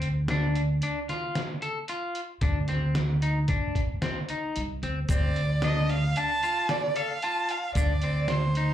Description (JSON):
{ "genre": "progressive instrumental, band music in an uneven meter", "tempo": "113 BPM", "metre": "5/4", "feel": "straight", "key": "unclear", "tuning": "A4 = 440 Hz", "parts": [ { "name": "electric guitar at the edge of break-up", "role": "arpeggios", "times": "0.0-8.7 s", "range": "C4 to A4", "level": "-32 LUFS", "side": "left 2 dB", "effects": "slapback echo" }, { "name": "upright bass", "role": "bass", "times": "0.0-8.7 s", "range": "C2 to D2", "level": "-26 LUFS", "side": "equal", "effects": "none" }, { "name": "trip hop sampler-style drum kit", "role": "drums", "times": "0.0-8.7 s", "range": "hi-hat, kick drum, snare drum", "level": "-31 LUFS", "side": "equal", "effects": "none" }, { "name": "rich violin", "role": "melody", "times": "5.1-8.7 s", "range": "C5 to A5", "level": "-28 LUFS", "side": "right 2 dB", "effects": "slapback echo" }, { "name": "tube shaker", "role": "percussion", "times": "5.1-8.0 s", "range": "none", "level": "-45 LUFS", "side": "left 2 dB", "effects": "none" } ], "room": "little or no reverb", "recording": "live gig heard through the venue's PA, club reverb", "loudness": "-25 LUFS", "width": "side -11 dB against mid", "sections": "0.0-8.7 A section", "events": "none", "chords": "0.0 Dm; 2.4 Cmadd9; 5.1 F6/D; 7.8 Cmadd9/D" }